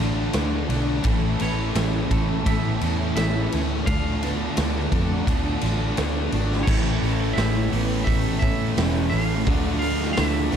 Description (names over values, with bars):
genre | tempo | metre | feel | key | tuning
rock, shoegaze and dream pop | 86 BPM | 4/4 | straight | A major | A4 = 440 Hz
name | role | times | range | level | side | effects
crunchy overdriven guitar | riff | 0.0-10.6 s | A2 to A4 | -29 LUFS | right 10 dB | reverse reverb
distorted electric guitar | riff | 0.0-10.6 s | A2 to D4 | -32 LUFS | equal | overdrive
thick fuzz guitar | riff | 0.0-10.6 s | A2 to D4 | -28 LUFS | left 12 dB | distortion, analog chorus
vintage muted fingered electric bass | bass | 0.0-10.6 s | E1 to F2 | -25 LUFS | equal | none
raw garage drum kit | drums | 0.3-10.6 s | crash cymbal, hi-hat, kick drum, ride cymbal, snare drum | -26 LUFS | equal | none
fingerpicked twelve-string acoustic guitar | arpeggios | 1.1-10.6 s | E3 to A4 | -34 LUFS | right 4 dB | lush chorus, slapback echo
twangy electric guitar | melody | 1.4-10.6 s | C#5 to F5 | -32 LUFS | right 2 dB | slapback echo
room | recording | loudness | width
small room ambience | dark, warm production | -20 LUFS | side -8 dB against mid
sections
0.0-6.7 A section; 6.7-10.6 B section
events
none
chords
0.0 Dm6; 1.1 Aadd9; 3.9 Dm6; 6.7 Aadd9; 9.5 Dm